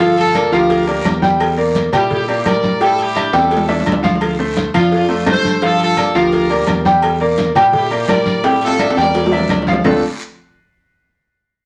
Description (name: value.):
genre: latin, salsa.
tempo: 170 BPM.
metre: 4/4.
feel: straight.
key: D minor.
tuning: A4 = 440 Hz.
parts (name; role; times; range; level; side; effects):
brilliant horn section; melody; 0.0-10.0 s; D4 to D5; -22 LUFS; equal; none.
bright upright piano; accompaniment; 0.0-10.0 s; D3 to G5; -17 LUFS; equal; none.
fingered electric bass; bass; 0.0-10.0 s; G1 to Bb2; -26 LUFS; equal; none.
agogo bells and timbales; percussion; 0.0-9.9 s; none; -25 LUFS; equal; none.
congas; percussion; 0.0-9.9 s; none; -24 LUFS; equal; none.
cowbell and bongos; percussion; 0.0-9.9 s; none; -27 LUFS; equal; none.
guiro; percussion; 0.0-9.9 s; none; -34 LUFS; equal; none.
claves; percussion; 0.4-9.9 s; none; -31 LUFS; equal; none.
room: wet studio reverb, RT60 0.6 s.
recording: none.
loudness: -15 LUFS.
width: mono.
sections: 0.0-9.8 A section; 9.8-11.3 B section.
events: drum fill 3.3-4.2, 8.4-9.8.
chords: 0.0 Gm9; 1.4 Em7b5; 2.8 A7sus4; 4.2 Dm7; 5.6 Gm9; 7.0 Em7b5; 8.4 A7sus4; 9.8 Dm7.